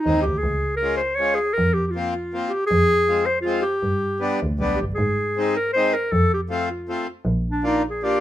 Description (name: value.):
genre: alpine folk, alpine dance band.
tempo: 158 BPM.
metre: 3/4.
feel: swing 55% on 8ths, rubato.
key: unclear.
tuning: A4 = 440 Hz.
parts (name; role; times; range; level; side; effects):
warm clarinet; melody; 0.0-8.2 s; D4 to Db5; -21 LUFS; equal; none.
accordion; accompaniment; 0.1-8.2 s; G3 to F4; -25 LUFS; left 2 dB; none.
rich double bass; bass; 0.1-8.2 s; G1 to Ab2; -24 LUFS; right 1 dB; none.
room: light reverb.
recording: minimal, uncompressed stereo recording.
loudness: -19 LUFS.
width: side -12 dB against mid.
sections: 0.0-8.2 A section.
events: none.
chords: 0.4 Db; 1.6 Fsus4; 2.7 Fm; 3.8 G; 5.0 Ab; 6.1 F; 7.3 Bb.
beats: 0.05 | 0.44 0.82 1.21 | 1.58 1.96 2.33 | 2.70 3.08 3.45 | 3.83 4.21 4.60 | 4.99 5.38 5.76 | 6.14 6.51 6.89 | 7.26 7.64 8.02.